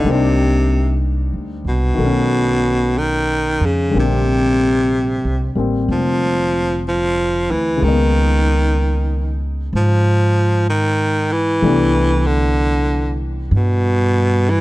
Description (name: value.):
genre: jazz ballad.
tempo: 63 BPM.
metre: 4/4.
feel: swing 67% on 8ths.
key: unclear.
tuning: A4 = 440 Hz.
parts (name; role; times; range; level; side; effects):
growling baritone saxophone; melody; 0.0-14.6 s; B2 to F3; -18 LUFS; equal; none.
warm baby grand piano; accompaniment; 0.0-14.6 s; Db3 to C5; -22 LUFS; left 4 dB; none.
upright bass; bass; 0.0-14.6 s; F1 to Ab2; -18 LUFS; equal; none.
room: studio reverb.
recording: dry, close 1970s-style studio recording.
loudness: -14 LUFS.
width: side -18 dB against mid.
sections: 0.0-14.6 A section.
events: none.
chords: 0.1 Cm9; 2.0 B9; 3.9 Bb69; 7.8 Db13; 11.6 Cmaj13.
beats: | 0.06 1.02 1.98 2.95 | 3.94 4.91 5.88 6.85 | 7.82 8.77 9.72 10.66 | 11.61 12.56 13.51 14.46.